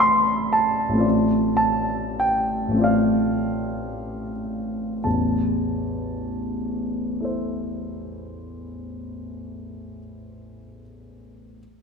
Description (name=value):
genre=classical, impressionist solo piano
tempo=25-40 BPM (dotted quarters)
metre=6/8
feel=rubato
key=A minor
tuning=A4 = 438 Hz
part: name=warm grand piano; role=solo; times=0.0-11.6 s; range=A1 to C6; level=-21 LUFS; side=equal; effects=none
room=wet concert hall reverb, RT60 2.1 s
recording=minimal, uncompressed stereo recording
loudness=-21 LUFS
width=side -5 dB against mid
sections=0.0-5.0 A section; 5.0-9.3 B section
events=slowing down 0.0-5.0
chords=0.0 Amadd9; 1.0 Dm7/A; 5.0 Am